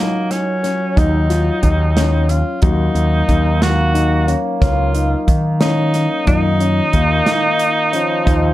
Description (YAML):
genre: progressive instrumental, band music in an uneven meter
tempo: 181 BPM (eighths)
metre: 11/8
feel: straight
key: Eb minor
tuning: A4 = 440 Hz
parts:
  - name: bright tenor saxophone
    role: melody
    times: 0.0-8.5 s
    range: Bb3 to Gb4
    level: -20 LUFS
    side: right 1 dB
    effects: none
  - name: warm trombone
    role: second line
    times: 0.0-8.5 s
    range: F3 to Bb3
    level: -23 LUFS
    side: equal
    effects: none
  - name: bell-like tine electric piano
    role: accompaniment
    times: 0.0-8.5 s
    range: Eb3 to Bb4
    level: -25 LUFS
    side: left 3 dB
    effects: none
  - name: dark grand piano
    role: arpeggios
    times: 0.0-8.5 s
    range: Bb3 to F5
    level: -23 LUFS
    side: left 4 dB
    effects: none
  - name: natural country drum kit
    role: drums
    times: 0.3-8.4 s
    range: hi-hat, kick drum, snare drum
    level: -18 LUFS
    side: equal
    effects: none
  - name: growling picked electric bass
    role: bass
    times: 1.0-8.5 s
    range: Db2 to Eb3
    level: -16 LUFS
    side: equal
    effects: overdrive
room: moderate studio reverb, RT60 0.6 s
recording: dark, warm production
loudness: -13 LUFS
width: side -15 dB against mid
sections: 0.0-8.5 A section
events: none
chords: 0.0 Ebm7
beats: 0.30 0.63 0.96 1.30 1.63 1.96 2.29 | 2.62 2.96 3.29 3.62 3.95 4.28 4.62 4.95 5.28 5.61 5.94 | 6.27 6.61 6.94 7.27 7.60 7.93 8.26